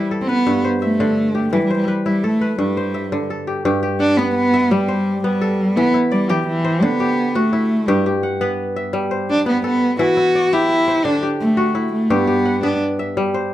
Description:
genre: west african traditional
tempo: 114 BPM (dotted quarters)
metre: 12/8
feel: straight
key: G major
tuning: A4 = 440 Hz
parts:
  - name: dark cello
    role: melody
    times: 0.0-12.8 s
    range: E3 to F#4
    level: -17 LUFS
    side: equal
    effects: none
  - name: kora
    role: arpeggios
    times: 0.0-13.5 s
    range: G2 to F#5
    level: -20 LUFS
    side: left 1 dB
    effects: none
room: light reverb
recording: close, detailed microphones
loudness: -15 LUFS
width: side -13 dB against mid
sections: 0.0-3.6 A section; 3.6-13.5 B section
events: cello solo 3.6-13.5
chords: 0.5 G; 1.5 Em; 2.6 G; 5.8 Em; 6.8 D; 7.9 G; 10.0 Em; 11.0 D; 12.1 G

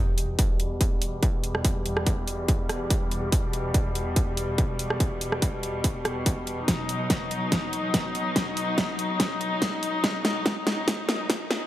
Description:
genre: heavy wobble dubstep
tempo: 143 BPM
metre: 4/4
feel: half-time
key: E harmonic minor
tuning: A4 = 444 Hz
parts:
  - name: rich chamber string section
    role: sustained chords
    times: 0.0-11.7 s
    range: E2 to D#4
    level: -29 LUFS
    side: left 1 dB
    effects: sidechain pumping, low-pass filter
  - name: dubstep drum kit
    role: drums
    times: 0.2-11.6 s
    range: hi-hat, rim click, snare drum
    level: -28 LUFS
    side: equal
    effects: none
  - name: electronic kick drum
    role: drums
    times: 0.4-11.4 s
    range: none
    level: -26 LUFS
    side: equal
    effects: distortion
room: light reverb, digital ambience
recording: high-pass filter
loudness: -24 LUFS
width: side -13 dB against mid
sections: 0.0-11.7 A section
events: build-up 0.0-11.7; filter sweep on string section 0.0-11.7; filter sweep 0.0-11.7; drum fill 6.7-11.7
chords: 0.0 Em; 6.7 B

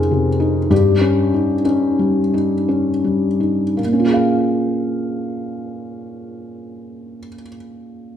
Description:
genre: classical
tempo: 53-68 BPM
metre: 3/4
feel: rubato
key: Bb dorian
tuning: A4 = 440 Hz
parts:
  - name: felt-muted upright piano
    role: accompaniment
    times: 0.0-8.2 s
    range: F2 to F5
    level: -16 LUFS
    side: left 1 dB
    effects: none
room: wet recital hall reverb, RT60 1.5 s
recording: none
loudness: -15 LUFS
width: side -9 dB against mid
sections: 0.0-3.8 A section; 3.8-7.2 B section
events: slowing down 0.0-3.8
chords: 0.0 Fm7; 0.7 Eb7/G; 3.8 Bbm7

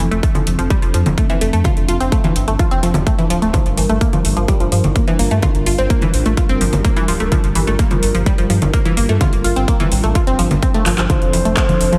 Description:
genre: progressive house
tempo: 127 BPM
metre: 4/4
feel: straight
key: unclear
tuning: A4 = 440 Hz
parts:
  - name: warm analog pad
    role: sustained chords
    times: 0.0-12.0 s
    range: F3 to Bb4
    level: -26 LUFS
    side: equal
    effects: chorus, sidechain pumping
  - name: unison pluck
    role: arpeggios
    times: 0.0-12.0 s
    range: E3 to F4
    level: -22 LUFS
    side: equal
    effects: sidechain pumping, delay
  - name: round analog bass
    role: bass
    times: 0.0-12.0 s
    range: D1 to G2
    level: -21 LUFS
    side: equal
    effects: sidechain pumping
  - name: big-room dance drum kit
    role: drums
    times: 0.0-12.0 s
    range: handclaps, hi-hat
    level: -27 LUFS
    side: equal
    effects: overdrive, sidechain pumping on hats, small room ambience
  - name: electronic kick drum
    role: drums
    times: 0.2-11.7 s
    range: none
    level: -19 LUFS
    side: equal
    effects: overdrive, small room ambience
  - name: congas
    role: percussion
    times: 0.3-11.8 s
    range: none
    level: -25 LUFS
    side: equal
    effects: sidechain pumping on perc
  - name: soft octave-layered synth lead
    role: melody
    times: 11.1-12.0 s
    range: C5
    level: -22 LUFS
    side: equal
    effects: chorus, delay
room: light reverb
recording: heavily compressed radio sound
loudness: -16 LUFS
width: mono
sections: 0.0-12.0 A section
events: filter sweep on analog synth pad 0.0-12.0; drum fill 10.9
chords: 0.0 F6; 3.5 Gm7; 11.1 F6

